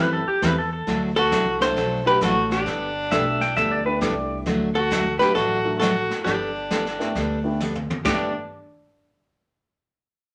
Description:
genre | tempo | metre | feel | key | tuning
country, western swing | 134 BPM | 4/4 | swing 65% on 8ths | G major | A4 = 442 Hz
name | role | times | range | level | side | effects
archtop guitar, miked and amplified | melody | 0.0-8.3 s | G4 to C5 | -26 LUFS | equal | none
pedal steel guitar | second line | 0.0-4.4, 8.1-8.3 s | G4 to G5 | -26 LUFS | equal | none
rich fiddle | second line | 0.0-8.3 s | D4 to A4 | -29 LUFS | equal | none
picked steel-string acoustic guitar | accompaniment | 0.0-8.3 s | D3 to A4 | -29 LUFS | equal | none
upright bass | bass | 0.0-8.3 s | G1 to F#2 | -32 LUFS | equal | none
vintage brush drum kit | drums | 0.4-8.4 s | brushed snare drum, hi-hat, kick drum, ride cymbal, snare drum, toms | -32 LUFS | equal | none
dark upright piano | accompaniment | 1.6-8.3 s | F#3 to B4 | -32 LUFS | equal | none
room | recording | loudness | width
wet studio reverb, RT60 0.6 s | none | -22 LUFS | mono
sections
0.0-4.5 A section; 4.5-8.1 B section; 8.1-9.8 C section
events
drum fill 7.6-8.1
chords
0.0 Am7; 0.9 D; 2.7 Gadd9; 4.5 D; 6.3 Gadd9

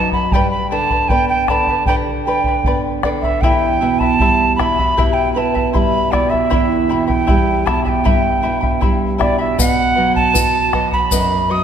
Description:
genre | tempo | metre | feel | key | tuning
andean folk, Andean ensemble | 78 BPM | 2/4 | straight | E minor | A4 = 439 Hz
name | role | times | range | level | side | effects
reedy quena | melody | 0.0-11.6 s | D5 to D#6 | -17 LUFS | right 2 dB | none
charango | accompaniment | 0.0-11.6 s | E4 to B5 | -21 LUFS | left 6 dB | none
nylon-string guitar | accompaniment | 0.0-11.6 s | E2 to B4 | -20 LUFS | right 5 dB | none
bombo | percussion | 0.1-11.3 s | none | -20 LUFS | left 1 dB | none
tube shaker | percussion | 9.6-11.3 s | none | -23 LUFS | left 8 dB | none
room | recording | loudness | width
wet scoring stage reverb, RT60 2.0 s | none | -13 LUFS | side -8 dB against mid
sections
0.0-9.6 A section; 9.6-11.6 A section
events
none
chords
0.3 G; 3.4 Em; 9.6 B

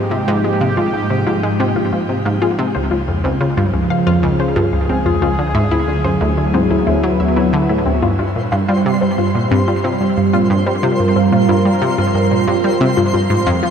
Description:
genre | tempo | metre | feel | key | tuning
ambient, sequencer-driven space music | 91 BPM | 4/4 | straight | unclear | A4 = 440 Hz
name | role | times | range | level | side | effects
sweeping resonant pad | sustained chords | 0.0-13.7 s | Db2 to Bb4 | -17 LUFS | right 2 dB | chorus
wide unison pluck | arpeggios | 0.0-13.7 s | C4 to F5 | -21 LUFS | moving between left 6 dB and right 1 dB | auto-pan, analog delay
analog pluck | riff | 0.0-13.7 s | Db2 to Ab3 | -18 LUFS | equal | chorus, analog delay
twinkling granular texture | texture | 8.3-13.7 s | C5 to C6 | -23 LUFS | equal | built-in reverb
room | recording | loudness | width
moderate shimmer reverb, RT60 7.6 s | none | -13 LUFS | side -7 dB against mid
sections
0.0-8.0 A section; 8.0-13.7 B section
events
none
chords
0.0 Abmaj7; 2.8 Dbadd9; 5.4 D7; 8.0 Fsus24/G

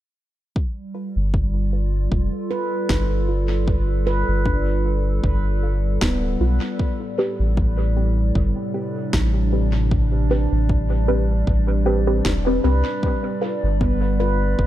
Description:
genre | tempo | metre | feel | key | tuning
ambient dub | 77 BPM | 4/4 | swing 55% on 16ths | unclear | A4 = 440 Hz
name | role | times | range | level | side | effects
warbly tape-like pad | sustained chords | 0.8-14.7 s | A2 to D5 | -26 LUFS | right 1 dB | chorus, built-in reverb
electronic kick drum | drums | 0.6-14.7 s | none | -23 LUFS | equal | none
filtered dub chord stab | stabs | 0.9-14.4 s | C4 to B4 | -26 LUFS | equal | phaser, dub echo
soft dub sub bass | bass | 1.2-14.7 s | D1 to C2 | -20 LUFS | equal | none
handpan | arpeggios | 2.5-14.7 s | B3 to B4 | -28 LUFS | right 1 dB | dub echo
electronic snare drum | drums | 2.9-12.4 s | none | -30 LUFS | equal | dub echo
room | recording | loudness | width
digital ambience | echo-heavy mix | -18 LUFS | side -13 dB against mid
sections
0.6-14.7 A section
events
none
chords
0.6 G9; 6.8 Am11; 13.0 G9

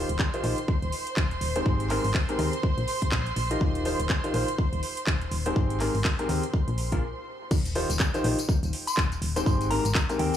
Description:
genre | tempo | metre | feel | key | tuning
piano house | 123 BPM | 4/4 | swing 59% on 16ths | Eb major | A4 = 438 Hz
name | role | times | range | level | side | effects
warm chamber violin section | sustained chords | 0.0-7.5 s | C5 to C6 | -34 LUFS | right 3 dB | sidechain pumping
clear upright piano | riff | 0.0-10.3 s | Ab2 to Eb5 | -30 LUFS | left 1 dB | sidechain pumping, dub echo
solid FM bass | bass | 0.0-10.3 s | Eb1 to Eb2 | -29 LUFS | left 1 dB | sidechain pumping
house drum kit | drums | 0.1-10.4 s | crash cymbal, handclaps, hi-hat, tambourine | -32 LUFS | equal | none
electronic kick drum | drums | 0.2-10.1 s | none | -25 LUFS | equal | none
soft synth bell | melody | 8.9-10.4 s | G5 to C6 | -31 LUFS | left 2 dB | chorus, phaser, dub echo
room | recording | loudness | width
light reverb | studio ambience | -24 LUFS | side -10 dB against mid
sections
0.0-7.5 A section; 7.5-10.4 B section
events
break 7.0-7.5; drop 7.5-10.4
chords
0.0 Eb69; 1.7 Abmaj9; 2.6 Bb5; 3.6 Eb69; 5.6 Abmaj9; 6.5 N.C.; 7.5 Eb69; 9.5 Abmaj9

